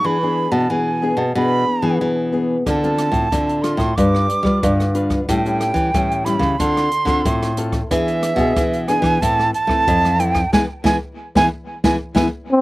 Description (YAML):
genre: samba and choro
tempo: 92 BPM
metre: 4/4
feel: straight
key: unclear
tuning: A4 = 443 Hz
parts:
  - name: breathy jazz flute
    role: second line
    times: 0.0-12.3 s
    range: E5 to D6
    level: -20 LUFS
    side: right 3 dB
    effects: slapback echo
  - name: nylon-string guitar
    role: accompaniment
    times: 0.0-12.3 s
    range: A2 to B4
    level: -22 LUFS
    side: left 2 dB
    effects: slapback echo
  - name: nylon-string guitar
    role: bass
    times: 0.0-12.3 s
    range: F2 to A3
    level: -20 LUFS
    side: equal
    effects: none
  - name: open jazz drum kit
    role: drums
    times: 2.7-12.3 s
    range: hi-hat, kick drum, rim click, snare drum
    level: -22 LUFS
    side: equal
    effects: none
  - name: warm trombone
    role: melody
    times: 12.5-12.6 s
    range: C4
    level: -12 LUFS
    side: left 1 dB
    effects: none
room: little or no reverb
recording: recorded outdoors, with no room sound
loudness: -16 LUFS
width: side -18 dB against mid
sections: 0.0-12.6 A section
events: flute solo 0.0-12.6; band accent 10.5-12.6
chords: 0.0 E7; 2.7 Dm7; 4.0 G7; 5.3 A7; 6.6 Dm7; 7.9 E7; 9.2 Am; 10.5 E